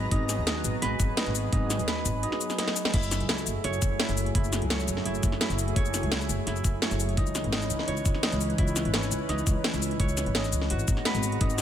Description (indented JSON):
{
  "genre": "liquid drum and bass",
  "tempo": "170 BPM",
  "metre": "4/4",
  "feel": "straight",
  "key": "F# dorian",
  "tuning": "A4 = 441 Hz",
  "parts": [
    { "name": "lush unison pad", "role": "sustained chords", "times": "0.0-11.6 s", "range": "E3 to A#5", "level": "-33 LUFS", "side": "equal", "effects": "chorus, sidechain pumping" },
    { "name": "Celtic harp", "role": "arpeggios", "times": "0.0-11.6 s", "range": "D#4 to C#5", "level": "-33 LUFS", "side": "right 1 dB", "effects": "digital delay" },
    { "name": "upright bass", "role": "bass", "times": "0.0-11.6 s", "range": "F#1 to D#2", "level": "-30 LUFS", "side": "equal", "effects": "none" },
    { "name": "drum and bass drum kit", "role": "drums", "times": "0.1-11.6 s", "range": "crash cymbal, hi-hat, shaker, snare drum", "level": "-30 LUFS", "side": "left 1 dB", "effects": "none" },
    { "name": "electronic kick drum", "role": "drums", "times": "0.1-11.5 s", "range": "none", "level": "-26 LUFS", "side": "equal", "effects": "none" }
  ],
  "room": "light reverb",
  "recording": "none",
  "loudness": "-25 LUFS",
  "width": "side -10 dB against mid",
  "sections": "0.0-2.9 A section; 2.9-11.6 A section",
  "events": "drop 0.0-2.9, 2.9-11.6; drum fill 2.6-2.9",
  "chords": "0.0 G#m9; 2.9 F#m9; 7.2 C#m9; 10.7 G#m9",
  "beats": "| 0.11 0.47 0.82 1.17 | 1.52 1.88 2.23 2.58 | 2.94 3.29 3.64 4.00 | 4.35 4.70 5.05 5.41 | 5.76 6.11 6.47 6.82 | 7.17 7.53 7.88 8.23 | 8.58 8.94 9.29 9.64 | 10.00 10.35 10.70 11.05 | 11.41"
}